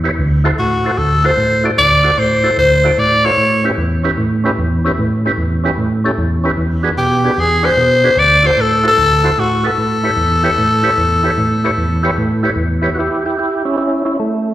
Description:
blues; 150 BPM; 4/4; swing 67% on 8ths; A4 = 439 Hz
overdriven tonewheel organ; accompaniment; 0.0-14.5 s; D2 to D5; -15 LUFS; right 1 dB; slow rotary speaker, chorus vibrato, slapback echo
growling tenor saxophone; melody; 0.6-3.7, 7.0-12.6 s; F#4 to D5; -13 LUFS; left 1 dB; slapback echo
moderate lush hall reverb, RT60 2.6 s; live gig heard through the venue's PA, recital hall reverb; -12 LUFS; side -13 dB against mid
0.0-13.0 A section; 13.0-14.5 B section
0.2 D7; 3.4 A7; 6.6 E7; 8.2 D7; 9.8 A7; 13.0 A

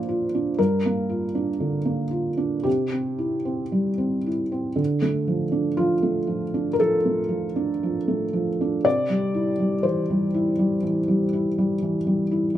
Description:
neoclassical minimalist piano; 55-61 BPM; 4/4; rubato; D minor; A4 = 440 Hz
felt-muted upright piano; solo; 0.0-12.6 s; G2 to D5; -21 LUFS; equal
moderate studio reverb, RT60 0.5 s; dark, warm production; -21 LUFS; side -12 dB against mid
0.0-4.8 A section; 4.8-12.6 A section
0.0 Bb; 0.6 Gm7; 2.7 C; 4.8 Dm; 8.9 C

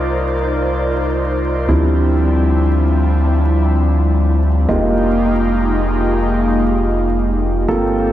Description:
drum and bass; free time; A4 = 439 Hz
airy breathy pad; sustained chords; 0.0-8.1 s; F3 to D5; -18 LUFS; left 1 dB; chorus, vintage 12-bit sampler grit
dark concert grand piano; stabs; 0.0-8.1 s; F3 to D5; -21 LUFS; right 2 dB; vintage 12-bit sampler grit, dub echo
saturated sub bass; bass; 0.0-8.1 s; F1 to D2; -16 LUFS; equal
moderate lush hall reverb, RT60 2.1 s; played on a big sound system in a bare room, stone room reverb, vinyl crackle; -13 LUFS; side -12 dB against mid
0.0-8.1 A section
0.0 Cm11; 1.7 Dm11; 4.7 Fm11

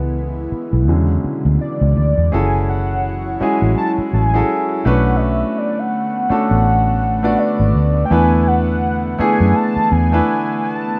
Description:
contemporary R&B; 83 BPM; 4/4; swing 58% on 16ths; A4 = 440 Hz
clear concert grand piano; accompaniment; 0.0-11.0 s; C#3 to D5; -21 LUFS; equal
ethereal airy pad; sustained chords; 0.0-11.0 s; B2 to C#5; -28 LUFS; equal; ensemble chorus, built-in reverb
vintage muted fingered electric bass; bass; 0.0-10.2 s; F#1 to F#2; -19 LUFS; equal
warm velvety synth lead; melody; 1.6-11.0 s; D5 to A5; -24 LUFS; equal; chorus
light reverb; rough home demo mix; -17 LUFS; mono
0.0-2.3 A section; 2.3-11.0 B section
grand piano solo 0.0-2.3
0.0 C#m7; 0.9 E13; 2.3 F#m9; 4.8 Bm9; 8.1 E7sus4

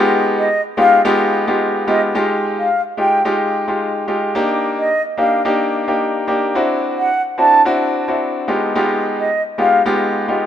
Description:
afrobeats; 109 BPM; 4/4; swing 55% on 16ths; A4 = 442 Hz
bright concert grand piano; accompaniment; 0.0-10.5 s; Ab3 to G4; -16 LUFS; left 1 dB
mellow concert flute; melody; 0.4-9.8 s; Eb5 to A5; -17 LUFS; equal; ping-pong delay
moderate lush hall reverb, RT60 2.5 s; rough home demo mix; -14 LUFS; side -10 dB against mid
0.0-2.2 A section; 2.2-10.5 B section
0.0 G7b9b13; 2.2 Fm9; 4.4 Ebmaj7; 6.6 D9; 8.5 G7b9b13

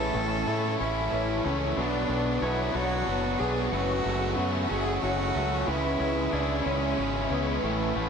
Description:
rock; 62 BPM (dotted quarters); 6/8; straight; A4 = 440 Hz
rich cello; melody; 0.0-8.1 s; A3 to A4; -32 LUFS; equal; tape echo
warm chamber string section; sustained chords; 0.0-8.1 s; A3 to C#6; -39 LUFS; left 1 dB
twangy electric guitar; arpeggios; 0.0-8.1 s; A2 to C#5; -36 LUFS; left 2 dB
vibraphone with soft mallets; arpeggios; 0.0-8.0 s; B4 to F#5; -36 LUFS; right 3 dB; tape echo
distorted electric guitar; riff; 0.0-8.1 s; F#2 to E4; -32 LUFS; right 11 dB; overdrive
overdriven electric guitar; riff; 0.0-8.1 s; F#2 to E4; -32 LUFS; left 12 dB
growling fingered electric bass; bass; 0.0-8.1 s; F#1 to A2; -32 LUFS; equal; overdrive
wet plate reverb, RT60 3.5 s; dreamy mix soaked in reverb; -25 LUFS; side -6 dB against mid
0.0-8.1 A section
0.0 A; 1.8 Bmadd9; 3.7 F#m; 5.7 C#m

